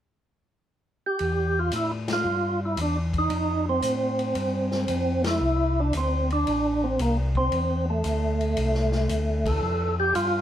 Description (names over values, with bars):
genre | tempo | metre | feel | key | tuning
soul jazz organ trio | 114 BPM | 4/4 | swing 69% on 8ths | C major | A4 = 440 Hz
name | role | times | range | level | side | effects
percussive tonewheel organ | melody | 1.1-10.4 s | A3 to A4 | -25 LUFS | right 1 dB | slow rotary speaker, overdrive, chorus vibrato
mellow tonewheel organ | bass | 1.2-10.4 s | A1 to A2 | -27 LUFS | equal | slow rotary speaker
vintage drum kit | drums | 1.2-10.3 s | hi-hat, kick drum, ride cymbal, snare drum | -34 LUFS | left 3 dB | none
room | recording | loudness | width
moderate stone room reverb, RT60 1.1 s | band playing live in one room | -22 LUFS | side -10 dB against mid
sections
0.0-1.2 A section; 1.2-10.4 B section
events
band accent 2.0, 5.2, 9.4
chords
0.0 N.C.; 1.2 Emadd11; 3.3 Fadd9; 5.4 C69; 9.6 Fadd9